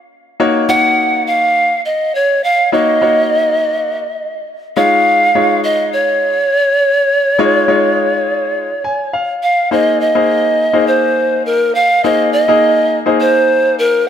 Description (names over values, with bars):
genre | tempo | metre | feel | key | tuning
pop | 103 BPM | 4/4 | straight | unclear | A4 = 443 Hz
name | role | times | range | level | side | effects
clear concert grand piano | accompaniment | 0.4-14.1 s | Ab3 to Ab5 | -16 LUFS | left 3 dB | none
breathy reedy pan flute | melody | 0.7-14.1 s | Bb4 to Gb5 | -12 LUFS | right 1 dB | tape echo
room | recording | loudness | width
moderate lush hall reverb, RT60 2.7 s | high-pass filter | -11 LUFS | side -9 dB against mid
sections
0.0-9.7 A section; 9.7-14.1 B section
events
grand piano fill 8.6-9.7; build-up 9.7-14.1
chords
0.4 Ebm7; 4.8 Dbadd9; 9.7 Abadd9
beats
| 0.40 0.98 1.56 2.14 | 2.73 3.31 3.89 4.47 | 5.06 5.64 6.22 6.80 | 7.39 7.97 8.55 9.13 | 9.72 10.30 10.88 11.46 | 12.05 12.63 13.21 13.79